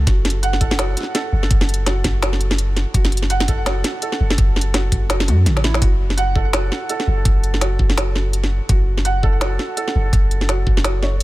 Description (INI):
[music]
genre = half-time drum and bass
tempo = 167 BPM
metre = 4/4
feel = swing 58% on 16ths, half-time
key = unclear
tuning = A4 = 440 Hz
[part]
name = felt-muted upright piano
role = arpeggios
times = 0.0-11.2 s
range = E4 to F#5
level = -25 LUFS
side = right 3 dB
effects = ping-pong delay
[part]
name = long sustained 808-style bass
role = bass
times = 0.0-11.2 s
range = F#1 to F#2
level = -18 LUFS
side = equal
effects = none
[part]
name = electronic kick drum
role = drums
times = 0.1-10.8 s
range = none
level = -17 LUFS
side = equal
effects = none
[part]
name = organic electronic drum kit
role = drums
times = 0.1-11.2 s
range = hi-hat, snare drum, toms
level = -22 LUFS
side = equal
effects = overdrive
[sound]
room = little or no reverb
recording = none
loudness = -16 LUFS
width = side -17 dB against mid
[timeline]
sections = 0.0-5.8 A section; 5.8-11.2 A section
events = drop 0.0-5.8, 5.8-11.2; kick drops out 5.1-5.8; drum fill 5.3-5.8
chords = 0.0 F#5